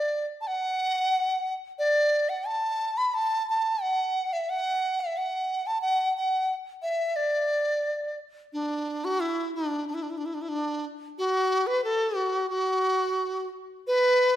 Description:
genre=chinese traditional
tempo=90 BPM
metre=2/4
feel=straight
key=D gong mode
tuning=A4 = 443 Hz
part: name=large dizi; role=solo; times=0.0-14.4 s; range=D4 to B5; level=-24 LUFS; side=equal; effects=none
room=moderate recital hall reverb, RT60 1.7 s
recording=none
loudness=-25 LUFS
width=side -12 dB against mid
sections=0.0-8.5 A section; 8.5-14.4 B section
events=none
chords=none

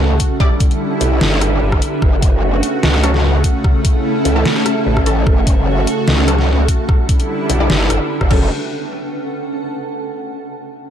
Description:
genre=heavy wobble dubstep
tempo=148 BPM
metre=4/4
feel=half-time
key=F# phrygian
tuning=A4 = 439 Hz
part: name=supersaw pad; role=sustained chords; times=0.0-8.5 s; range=C#3 to F#4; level=-21 LUFS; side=equal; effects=phaser, sidechain pumping
part: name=growl bass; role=bass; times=0.0-8.5 s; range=F#1 to C#2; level=-15 LUFS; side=equal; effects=chorus, overdrive
part: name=granular cloud pad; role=texture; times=0.0-10.1 s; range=C#4 to A5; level=-22 LUFS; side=right 1 dB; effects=built-in reverb, sidechain pumping
part: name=dubstep drum kit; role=drums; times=0.2-8.4 s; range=crash cymbal, hi-hat, rim click, snare drum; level=-20 LUFS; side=equal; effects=none
part: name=electronic kick drum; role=drums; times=0.2-8.4 s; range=none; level=-14 LUFS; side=equal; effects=none
part: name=orchestra-hit-like synth stab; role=stabs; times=0.4-0.6, 3.0-8.5 s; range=E3 to D5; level=-25 LUFS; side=left 1 dB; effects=built-in reverb, digital delay
room=little or no reverb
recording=dark, warm production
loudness=-13 LUFS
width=side -9 dB against mid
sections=0.0-8.5 A section; 8.5-10.1 B section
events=filter sweep on synth stab 0.0-8.5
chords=0.4 Em7; 2.0 F#m; 3.6 A; 5.3 F#m; 6.9 Em7; 8.3 F#m

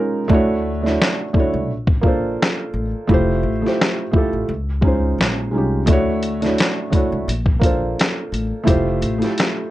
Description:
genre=lo-fi hip hop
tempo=86 BPM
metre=4/4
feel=swing 56% on 16ths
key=unclear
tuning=A4 = 438 Hz
part: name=felt-muted upright piano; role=accompaniment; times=0.0-9.7 s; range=G#3 to C#5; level=-20 LUFS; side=right 1 dB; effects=cassette tape, low-pass filter
part: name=upright bass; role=bass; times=0.3-9.2 s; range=F1 to D2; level=-22 LUFS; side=left 1 dB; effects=none
part: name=trip hop sampler-style drum kit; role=drums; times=0.3-9.6 s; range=hi-hat, kick drum, snare drum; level=-18 LUFS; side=equal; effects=vintage 12-bit sampler grit
room=little or no reverb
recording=none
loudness=-16 LUFS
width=side -15 dB against mid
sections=0.0-9.7 A section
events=break 0.0-5.9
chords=0.3 Dmaj9; 1.7 Bbmaj9; 3.1 Fmaj9; 4.5 C#maj9; 5.9 Dmaj9; 7.3 Bbmaj9; 8.7 Fmaj9

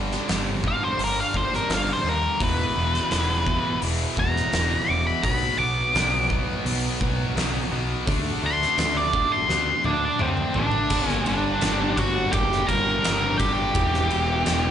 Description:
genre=quiet-loud alternative rock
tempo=85 BPM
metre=4/4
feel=straight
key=unclear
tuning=A4 = 440 Hz
part: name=fuzz guitar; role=riff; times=0.0-14.7 s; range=E2 to D4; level=-30 LUFS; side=right 10 dB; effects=distortion, slapback echo
part: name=tight distorted guitar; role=riff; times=0.0-14.7 s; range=E2 to D4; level=-31 LUFS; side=left 12 dB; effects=distortion
part: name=growling picked electric bass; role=bass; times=0.0-14.7 s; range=E1 to Eb2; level=-28 LUFS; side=equal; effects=overdrive
part: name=oversized low-tuned drum kit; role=drums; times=0.1-14.6 s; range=crash cymbal, hi-hat, kick drum, ride cymbal, snare drum, toms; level=-27 LUFS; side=equal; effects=none
part: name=octave-fuzz lead guitar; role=melody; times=0.7-14.7 s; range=C4 to D6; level=-24 LUFS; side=equal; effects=distortion, slapback echo
part: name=fuzz guitar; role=riff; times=10.9-14.7 s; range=G2 to E4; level=-35 LUFS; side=left 1 dB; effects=none
room=small room ambience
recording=live gig heard through the venue's PA, club reverb, nothing above 10.5 kHz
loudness=-20 LUFS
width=side -9 dB against mid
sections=0.0-10.9 A section; 10.9-14.7 B section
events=lead electric guitar solo 0.0-10.9; drum fill 9.5-10.9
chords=0.0 G5; 2.4 E5; 5.2 Bm; 8.1 D5; 10.9 Gm; 13.8 Em

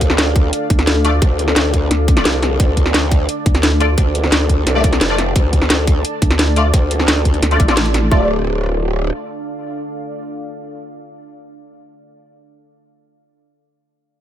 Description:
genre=dark technical drum and bass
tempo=174 BPM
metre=4/4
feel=straight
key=D minor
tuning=A4 = 440 Hz
part: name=deep dark ambient pad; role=sustained chords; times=0.0-11.6 s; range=D4 to A5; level=-24 LUFS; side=equal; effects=chorus, built-in reverb, sidechain pumping
part: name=growl bass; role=bass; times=0.0-9.1 s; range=D1 to D2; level=-17 LUFS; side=equal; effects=chorus, tube saturation
part: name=drum and bass drum kit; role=drums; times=0.0-8.0 s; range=hi-hat, snare drum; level=-17 LUFS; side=equal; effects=none
part: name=electronic kick drum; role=drums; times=0.0-8.2 s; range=none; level=-14 LUFS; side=equal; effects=none
part: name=vowel-sweep wobble bass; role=bass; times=0.7-4.0, 6.2-8.1 s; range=A1 to D2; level=-15 LUFS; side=equal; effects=chorus
part: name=band-passed chord stab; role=stabs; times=1.0-12.0 s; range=A3 to D5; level=-22 LUFS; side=left 2 dB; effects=phaser, ensemble chorus, tape echo
room=little or no reverb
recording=none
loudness=-12 LUFS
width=side -11 dB against mid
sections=0.0-8.1 A section; 8.1-10.9 B section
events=drop 0.0-8.1; band accent 7.8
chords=0.0 Dm

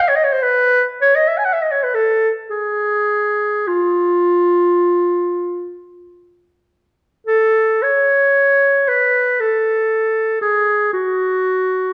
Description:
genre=classical, free, expressive piece for unaccompanied clarinet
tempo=39-64 BPM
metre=3/4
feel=rubato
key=unclear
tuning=A4 = 442 Hz
part: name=clear clarinet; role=solo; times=0.0-11.9 s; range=E#4 to G#5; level=-16 LUFS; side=equal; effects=none
room=moderate recital hall reverb, RT60 1.4 s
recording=dark, warm production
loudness=-16 LUFS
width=mono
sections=0.0-7.3 A section; 7.3-11.9 B section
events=none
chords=none

